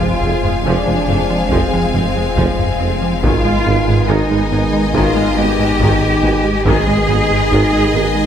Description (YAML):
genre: cinematic, hybrid orchestral and electronic film score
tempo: 70 BPM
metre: 4/4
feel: straight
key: unclear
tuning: A4 = 438 Hz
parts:
  - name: warm studio violin section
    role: melody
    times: 0.0-8.3 s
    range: Ab5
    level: -26 LUFS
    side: left 4 dB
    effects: none
  - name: bright symphonic violin section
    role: second line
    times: 0.0-8.3 s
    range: Eb5 to F5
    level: -24 LUFS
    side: left 3 dB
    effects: none
  - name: rich symphonic viola section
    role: accompaniment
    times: 0.0-8.0 s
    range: Eb3 to C4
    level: -24 LUFS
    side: equal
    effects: none
  - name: dark trombone section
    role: sustained chords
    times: 0.0-8.3 s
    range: C3 to Ab3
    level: -24 LUFS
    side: right 2 dB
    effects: none
  - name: mellow French horn section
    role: sustained chords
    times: 0.0-8.3 s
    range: Cb4 to F4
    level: -24 LUFS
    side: left 6 dB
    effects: none
  - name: warm analog pad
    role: sustained chords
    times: 0.0-8.3 s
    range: Eb3 to C5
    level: -25 LUFS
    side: equal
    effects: none
  - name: rubbery square bass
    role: riff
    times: 0.0-8.3 s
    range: F2 to Ab3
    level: -20 LUFS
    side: right 1 dB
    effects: none
  - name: clear symphonic cello section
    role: bass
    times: 0.0-8.3 s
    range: C4 to Ab4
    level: -20 LUFS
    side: right 2 dB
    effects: none
  - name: rich symphonic double bass section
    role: bass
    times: 0.0-8.0 s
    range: F1 to Ab1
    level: -23 LUFS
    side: right 3 dB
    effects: none
  - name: sub bass with octave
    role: bass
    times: 0.0-8.3 s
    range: F1 to Ab1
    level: -23 LUFS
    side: left 1 dB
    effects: none
  - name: solo taiko drums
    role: drums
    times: 0.0-7.5 s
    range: none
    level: -22 LUFS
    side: left 1 dB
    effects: none
  - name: warm tuba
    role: bass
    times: 0.2-8.0 s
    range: F1 to Ab1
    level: -23 LUFS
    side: right 2 dB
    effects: none
room: wet concert hall reverb, RT60 1.9 s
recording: none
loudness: -12 LUFS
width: side -9 dB against mid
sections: 0.0-8.3 A section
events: none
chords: 0.0 Fm; 3.2 Abm